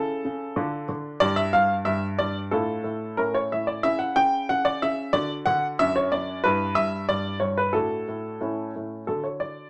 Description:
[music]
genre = classical-period piano sonatina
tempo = 92 BPM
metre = 2/4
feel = rubato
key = D minor, D major from 3.8 s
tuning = A4 = 440 Hz
[part]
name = warm baby grand piano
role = solo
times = 0.0-9.7 s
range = F#2 to G5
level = -25 LUFS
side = equal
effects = none
[sound]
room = moderate studio reverb, RT60 0.5 s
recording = none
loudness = -25 LUFS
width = mono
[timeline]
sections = 0.0-9.1 A section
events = none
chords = 0.0 A/C#; 0.6 Dm; 1.2 G5; 2.5 Dm/A; 3.2 A; 3.8 C#dim; 5.1 D; 5.8 D/F#; 6.4 Em7/G; 7.7 D/A; 8.4 A; 9.1 D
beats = 0.59 | 1.23 1.87 | 2.52 3.18 | 3.84 4.49 | 5.14 5.78 | 6.43 7.08 | 7.74 8.41 | 9.07

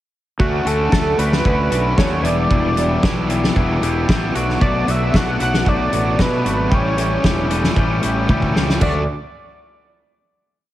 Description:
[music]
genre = indie rock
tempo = 114 BPM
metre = 4/4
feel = straight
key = D major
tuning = A4 = 440 Hz
[part]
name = octave-doubled lead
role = melody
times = 0.4-9.1 s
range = F#4 to F#5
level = -22 LUFS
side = equal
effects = chorus, slapback echo
[part]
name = biting overdriven guitar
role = riff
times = 0.4-9.0 s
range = E2 to G4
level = -25 LUFS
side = right 6 dB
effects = analog chorus, slapback echo
[part]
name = clean electric guitar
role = riff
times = 0.4-9.0 s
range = E2 to G4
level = -22 LUFS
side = left 4 dB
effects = none
[part]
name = fuzz fingered electric bass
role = bass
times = 0.4-9.1 s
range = E1 to B2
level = -21 LUFS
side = equal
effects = overdrive
[part]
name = loose indie drum kit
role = drums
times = 0.4-8.9 s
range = crash cymbal, hi-hat, kick drum, snare drum, toms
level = -19 LUFS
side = equal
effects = none
[sound]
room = studio reverb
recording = heavily compressed radio sound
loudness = -15 LUFS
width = side -14 dB against mid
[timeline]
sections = 0.4-8.8 verse; 8.8-10.7 final chord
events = drum fill 8.3-8.8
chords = 0.4 Dmaj7; 2.2 Em7; 4.3 Bm7; 6.7 A7; 8.8 D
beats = | 0.39 0.92 1.45 1.97 | 2.50 3.03 3.56 4.09 | 4.61 5.14 5.67 6.19 | 6.72 7.24 7.76 8.29 | 8.81

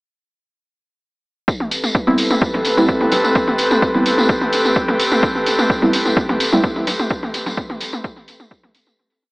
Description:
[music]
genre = dub techno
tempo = 128 BPM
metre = 4/4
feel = straight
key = A minor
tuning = A4 = 439 Hz
[part]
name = airy breathy pad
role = sustained chords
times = 1.8-8.9 s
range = C4 to B4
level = -18 LUFS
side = equal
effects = chorus, sidechain pumping
[part]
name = electronic kick drum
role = drums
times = 1.5-8.6 s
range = none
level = -20 LUFS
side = equal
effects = overdrive
[part]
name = tambourine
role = percussion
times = 1.5-9.0 s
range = none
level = -25 LUFS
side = equal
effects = dub echo
[part]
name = electronic toms and congas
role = percussion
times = 1.6-9.0 s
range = none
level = -23 LUFS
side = equal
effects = sidechain pumping on toms, sidechain pumping on perc, dub echo
[part]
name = electronic hi-hat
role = drums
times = 1.7-8.8 s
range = none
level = -25 LUFS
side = equal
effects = none
[part]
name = deep mellow chord stab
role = stabs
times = 2.1-6.6 s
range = G3 to E4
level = -18 LUFS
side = equal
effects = chorus, phaser, vintage 12-bit sampler grit, sidechain pumping, dub echo
[sound]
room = moderate plate reverb, RT60 1.2 s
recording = echo-heavy mix, AM radio sound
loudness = -14 LUFS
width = side -25 dB against mid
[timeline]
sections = 1.5-9.0 groove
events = filter sweep on synth stab 1.5-9.0; fade-out 6.5-9.0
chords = 1.5 Am9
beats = | 1.48 1.95 2.42 2.89 | 3.36 3.83 4.29 4.76 | 5.23 5.70 6.17 6.64 | 7.11 7.58 8.04 8.51

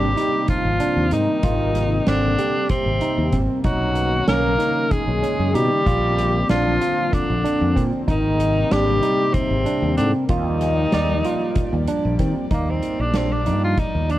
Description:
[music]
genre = progressive instrumental, band music in an uneven meter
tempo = 190 BPM (eighths)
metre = 7/8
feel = straight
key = Eb major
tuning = A4 = 443 Hz
[part]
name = bright tenor saxophone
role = melody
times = 0.0-14.2 s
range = Bb3 to A#4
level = -23 LUFS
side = equal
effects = none
[part]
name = bright trombone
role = second line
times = 0.0-11.8 s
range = C3 to A#3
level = -27 LUFS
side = left 3 dB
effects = none
[part]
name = airy breathy pad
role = accompaniment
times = 0.0-14.2 s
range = C3 to D5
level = -27 LUFS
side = left 2 dB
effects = chorus
[part]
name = barky tine electric piano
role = arpeggios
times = 0.0-14.2 s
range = C4 to D5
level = -25 LUFS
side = right 4 dB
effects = overdrive, tape echo
[part]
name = fretless electric bass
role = bass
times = 0.0-14.2 s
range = Ab1 to Eb3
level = -22 LUFS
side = equal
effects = ensemble chorus
[part]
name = soft-mallet drum kit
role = drums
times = 0.2-14.2 s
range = hi-hat, kick drum, snare drum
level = -26 LUFS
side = equal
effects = none
[sound]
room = light reverb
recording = dark, warm production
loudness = -17 LUFS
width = side -14 dB against mid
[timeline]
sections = 0.0-12.5 A section; 12.5-14.2 B section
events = tenor saxophone solo 12.5-14.2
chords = 0.0 Abmaj7; 3.7 Bmaj9; 5.9 Bb; 8.1 Abmaj7; 10.3 Ebmaj9; 12.5 Ebmaj7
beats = 0.18 0.50 0.81 1.13 | 1.44 1.76 2.07 2.39 2.71 3.02 3.34 | 3.65 3.97 4.28 4.60 4.92 5.23 5.55 | 5.87 6.18 6.50 6.81 7.13 7.45 7.76 | 8.08 8.40 8.71 9.03 9.35 9.66 9.98 | 10.30 10.61 10.93 11.25 11.56 11.88 12.20 | 12.52 12.83 13.15 13.46 13.78 14.10

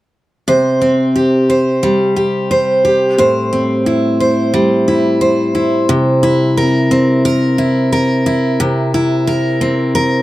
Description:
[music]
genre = pop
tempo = 89 BPM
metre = 4/4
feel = swing 55% on 16ths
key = C mixolydian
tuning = A4 = 440 Hz
[part]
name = picked steel-string acoustic guitar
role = solo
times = 0.5-10.2 s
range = A2 to C5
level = -11 LUFS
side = equal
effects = none
[sound]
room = light reverb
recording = dry, close 1970s-style studio recording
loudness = -11 LUFS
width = side -16 dB against mid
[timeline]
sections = 0.5-5.9 A section; 5.9-10.2 B section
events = none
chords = 0.5 C5; 3.2 Am7; 5.9 C7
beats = | 0.48 1.15 1.83 2.51 | 3.19 3.86 4.54 5.22 | 5.89 6.57 7.25 7.92 | 8.60 9.27 9.95

